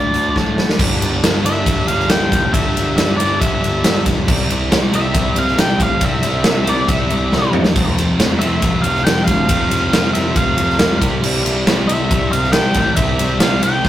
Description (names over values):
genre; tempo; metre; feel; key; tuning
quiet-loud alternative rock; 138 BPM; 4/4; straight; G mixolydian; A4 = 436 Hz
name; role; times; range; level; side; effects
octave-fuzz lead guitar; melody; 0.0-13.9 s; D5 to G5; -20 LUFS; equal; distortion, analog delay
sludgy distorted guitar; riff; 0.0-13.9 s; F2 to D4; -24 LUFS; left 2 dB; overdrive
sludgy distorted guitar; riff; 0.0-13.9 s; G2 to F4; -24 LUFS; right 4 dB; overdrive
fuzz picked electric bass; bass; 0.0-13.9 s; F1 to A2; -21 LUFS; equal; overdrive
big rock drum kit; drums; 0.1-13.9 s; crash cymbal, hi-hat, kick drum, ride cymbal, snare drum, toms; -16 LUFS; equal; none
room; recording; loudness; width
moderate studio reverb, RT60 0.6 s; rough rehearsal-room recording, tube saturation; -13 LUFS; side -12 dB against mid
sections
0.8-13.9 A section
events
drum fill 0.4-0.8, 7.3-7.7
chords
0.0 D; 0.8 G6; 4.3 C; 7.7 F; 11.0 C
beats
0.35 | 0.79 1.23 1.66 2.10 | 2.53 2.97 3.40 3.84 | 4.27 4.71 5.14 5.57 | 6.01 6.44 6.88 7.31 | 7.75 8.18 8.62 9.05 | 9.49 9.92 10.36 10.79 | 11.23 11.66 12.10 12.53 | 12.97 13.40 13.84